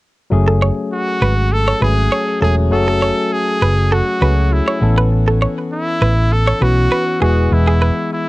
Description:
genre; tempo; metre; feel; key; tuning
afrobeats; 100 BPM; 4/4; straight; unclear; A4 = 440 Hz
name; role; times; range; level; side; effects
barky tine electric piano; accompaniment; 0.3-8.3 s; E3 to A4; -20 LUFS; left 3 dB; cassette tape
hollow-body short-scale fingered electric bass; bass; 0.3-7.9 s; E1 to C#2; -14 LUFS; equal; none
direct-recorded clean electric guitar; riff; 0.5-7.9 s; G#4 to C#5; -20 LUFS; right 3 dB; cassette tape, tape echo
bright trumpet; melody; 0.9-8.3 s; E4 to A4; -19 LUFS; equal; cassette tape, tape echo
room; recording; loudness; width
light reverb; home recording on cassette; -13 LUFS; side -19 dB against mid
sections
0.3-8.3 A section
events
none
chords
0.3 F#madd9; 4.8 Aadd9; 7.2 E

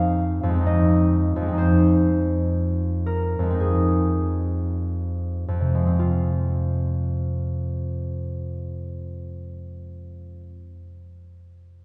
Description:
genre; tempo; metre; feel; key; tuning
classical, solo harp piece; 44-66 BPM; 4/4; rubato; F minor; A4 = 439 Hz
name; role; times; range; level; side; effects
concert harp; solo; 0.0-10.9 s; F2 to F5; -24 LUFS; equal; none
room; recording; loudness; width
wet concert hall reverb, RT60 2.1 s; recorded in a church or concert hall, nothing above 10.6 kHz; -23 LUFS; mono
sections
0.0-6.0 A section; 6.0-10.4 B section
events
slowing down 0.0-6.0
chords
0.0 Fm7; 6.0 Fm

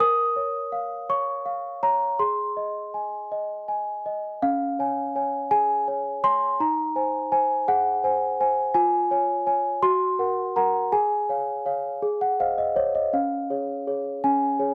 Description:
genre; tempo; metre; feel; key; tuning
classical, lullaby for celesta; 55 BPM (dotted quarters); 6/8; straight; Db major; A4 = 442 Hz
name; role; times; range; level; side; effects
celesta; solo; 0.0-14.7 s; Db4 to Eb6; -24 LUFS; equal; none
room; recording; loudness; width
moderate spring reverb, RT60 1.8 s, small room ambience; dark, warm production; -25 LUFS; mono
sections
0.0-4.4 A section; 4.4-14.7 B section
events
none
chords
0.0 Bbm; 2.2 Ab; 4.4 Db; 6.6 Ab7/Eb; 8.7 Db/F; 9.8 Gb; 10.9 Db/Ab; 12.0 Ab; 13.1 Db

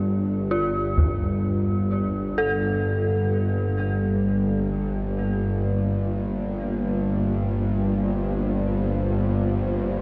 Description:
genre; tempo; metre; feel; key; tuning
dark ambient drone; free time; none; none; unclear; A4 = 440 Hz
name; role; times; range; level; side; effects
dark analog pad; sustained chords; 0.0-10.0 s; G3 to C5; -34 LUFS; equal; chorus
dark detuned synth bell; arpeggios; 0.0-10.0 s; F4 to A4; -31 LUFS; equal; chorus, diffuse ambient delay
bowed-like drone; drone; 0.0-10.0 s; G1 to G2; -26 LUFS; equal; built-in reverb
quartz singing bowl; texture; 0.0-10.0 s; none; barely audible; none; none
taiko ensemble; percussion; 1.0-1.2 s; none; -28 LUFS; equal; low-pass filter on perc
room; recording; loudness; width
wet huge ambient reverb, RT60 7.1 s; none; -24 LUFS; mono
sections
0.0-10.0 A section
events
fade-in on analog synth pad 0.0-10.0; filter sweep on synth drone 0.0-10.0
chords
0.0 G5; 2.9 Bb5

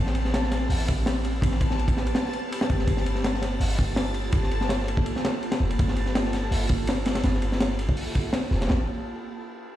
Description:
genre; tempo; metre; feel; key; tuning
drum and bass, jungle; 165 BPM; 4/4; straight; unclear; A4 = 440 Hz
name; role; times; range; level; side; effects
ethereal airy pad; sustained chords; 0.0-8.9 s; Bb3 to B4; -32 LUFS; equal; ensemble chorus, built-in reverb, phaser
warm 808-style bass; bass; 0.0-8.9 s; F1 to A1; -26 LUFS; equal; none
backwards swelling texture; texture; 0.0-8.7 s; A5 to A6; -38 LUFS; left 3 dB; built-in reverb
crunchy breakbeat drum kit; drums; 0.1-8.8 s; hi-hat, kick drum, ride cymbal, snare drum; -26 LUFS; equal; none
room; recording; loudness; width
little or no reverb; played on a big sound system in a bare room, large studio reverb; -23 LUFS; side -13 dB against mid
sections
0.0-8.7 A section; 8.7-9.8 B section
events
filter sweep on ambient pad 0.0-8.7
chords
0.0 Am9; 2.9 Gm9; 8.7 Am9

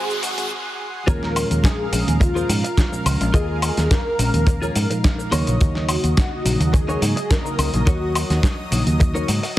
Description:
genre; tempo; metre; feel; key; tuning
nu-disco, nu disco; 106 BPM; 4/4; straight; unclear; A4 = 440 Hz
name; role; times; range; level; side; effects
wide unison lead; melody; 0.0-8.4 s; F4 to Bb4; -27 LUFS; equal; ensemble chorus, digital delay
mellow tine electric piano; accompaniment; 0.0-9.4 s; Bb2 to Ab4; -26 LUFS; equal; slow stereo tremolo, sidechain pumping
lush unison pad; sustained chords; 0.0-9.6 s; Gb3 to Eb6; -31 LUFS; equal; chorus, sidechain pumping
direct-recorded clean electric guitar; riff; 0.0-9.6 s; Eb4 to Eb5; -28 LUFS; left 1 dB; lush chorus, digital delay
fingered electric bass; bass; 0.0-9.4 s; Bb1 to Ab2; -21 LUFS; equal; high-pass filter
riser; sound effects; 0.0-0.5 s; none; -29 LUFS; equal; none
dusty soul sampler-style drum kit; drums; 0.1-9.6 s; cabasa, hi-hat, snare drum, woodblock; -25 LUFS; left 1 dB; high-pass filter on hats, studio reverb, high-pass filter on snare, high-pass filter on perc
kick drum; drums; 1.1-9.1 s; none; -18 LUFS; equal; studio reverb
room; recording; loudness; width
light reverb, digital ambience; heavily compressed radio sound, high-pass filter; -17 LUFS; side -15 dB against mid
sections
0.0-1.1 A section; 1.1-9.6 B section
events
build-up 0.0-1.1; riser 0.0-0.5; filter sweep on tine electric piano 0.0-1.1; break 0.5-1.1; drop 1.1-9.6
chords
0.0 Ab7; 1.1 Db6; 5.3 Ebm7

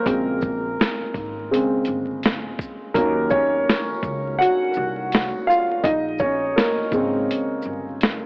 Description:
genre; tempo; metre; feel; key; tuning
lo-fi hip hop; 83 BPM; 4/4; swing 58% on 16ths; unclear; A4 = 440 Hz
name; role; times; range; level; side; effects
dark upright piano; accompaniment; 0.0-8.3 s; C#3 to F#5; -20 LUFS; equal; low-pass filter
upright bass; bass; 0.1-8.2 s; G1 to D#2; -32 LUFS; equal; transformer saturation
dusty soul sampler-style drum kit; drums; 0.1-8.2 s; hi-hat, kick drum, shaker, snare drum; -22 LUFS; equal; none
room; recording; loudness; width
moderate plate reverb, RT60 2.4 s; worn, warbling old tape, cassette tape, vinyl crackle, warbly pitch drift, AM radio sound; -19 LUFS; side -29 dB against mid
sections
0.0-8.3 A section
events
upright piano solo 0.0-8.3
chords
0.1 A#m7; 3.0 D#m7; 5.8 A#m7

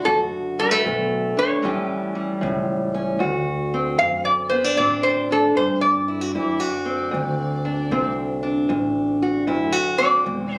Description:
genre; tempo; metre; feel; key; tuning
acoustic country blues, solo or duo; 76 BPM; 4/4; swing 66% on 8ths; D mixolydian; A4 = 435 Hz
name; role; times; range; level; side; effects
metal-body resonator slide guitar; melody; 0.0-10.6 s; A4 to F5; -23 LUFS; equal; none
fingerpicked steel-string acoustic guitar; accompaniment; 0.0-10.6 s; D2 to G4; -24 LUFS; equal; none
upright bass; bass; 0.1-10.6 s; E1 to A2; -33 LUFS; equal; none
kick drum; drums; 0.1-2.7 s; none; -41 LUFS; equal; none
room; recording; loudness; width
moderate studio reverb, RT60 0.6 s; recorded on a phone in the room, club reverb, compression; -22 LUFS; mono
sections
0.0-3.2 A section; 3.2-10.6 B section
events
resonator guitar played with a steel bar solo 3.2-10.6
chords
0.0 D; 1.6 A7; 3.2 D7

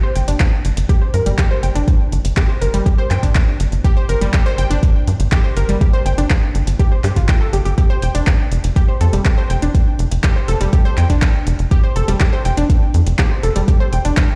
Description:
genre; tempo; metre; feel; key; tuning
progressive house; 122 BPM; 4/4; straight; unclear; A4 = 440 Hz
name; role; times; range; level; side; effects
analog pluck; arpeggios; 0.0-14.2 s; G3 to G5; -25 LUFS; equal; chorus, sidechain pumping, delay
tight sequencer bass; bass; 0.2-14.1 s; F1 to G2; -18 LUFS; equal; tube saturation, sidechain pumping
deep house drum kit; drums; 0.2-14.3 s; handclaps, hi-hat; -28 LUFS; equal; sidechain pumping on hats, small room ambience
electronic kick drum; drums; 0.4-14.3 s; none; -16 LUFS; equal; small room ambience
room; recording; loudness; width
digital ambience; played on a big sound system in a bare room, stone room reverb; -16 LUFS; mono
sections
0.0-14.4 A section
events
none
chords
0.0 N.C.; 7.8 Dm7/F (rootless)

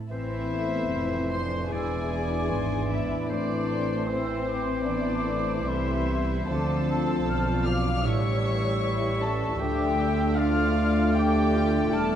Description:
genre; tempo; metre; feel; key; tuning
classical, slow romantic movement for symphony orchestra; 76 BPM; 4/4; rubato; A minor; A4 = 440 Hz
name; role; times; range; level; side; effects
concert harp; arpeggios; 0.0-12.2 s; E2 to B4; -34 LUFS; left 6 dB; none
warm symphonic violin section; melody; 0.1-12.2 s; C5 to F6; -34 LUFS; left 2 dB; none
bright oboe; second line; 0.1-12.2 s; C5 to E5; -37 LUFS; right 2 dB; none
warm chamber violin section; second line; 0.1-12.2 s; C4 to F5; -34 LUFS; left 3 dB; none
dark symphonic viola section; accompaniment; 0.1-12.2 s; E3 to F4; -34 LUFS; right 1 dB; none
mellow bassoon; accompaniment; 0.1-12.2 s; E3 to A3; -33 LUFS; right 3 dB; none
mellow French horn section; sustained chords; 0.1-12.2 s; E3 to E4; -31 LUFS; left 2 dB; none
dark studio double bass section; bass; 0.1-12.2 s; E1 to D2; -31 LUFS; right 2 dB; none
warm symphonic cello section; bass; 0.1-12.2 s; D2 to D3; -33 LUFS; right 2 dB; none
small flute group; second line; 1.7-12.2 s; B5 to F6; -36 LUFS; equal; none
room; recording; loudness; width
wet scoring stage reverb, RT60 1.9 s; dark, warm production; -23 LUFS; side -9 dB against mid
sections
0.1-12.2 A section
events
none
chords
0.1 Am; 1.7 E7; 3.3 Am; 6.5 Dm7; 8.1 A7; 9.6 Dm

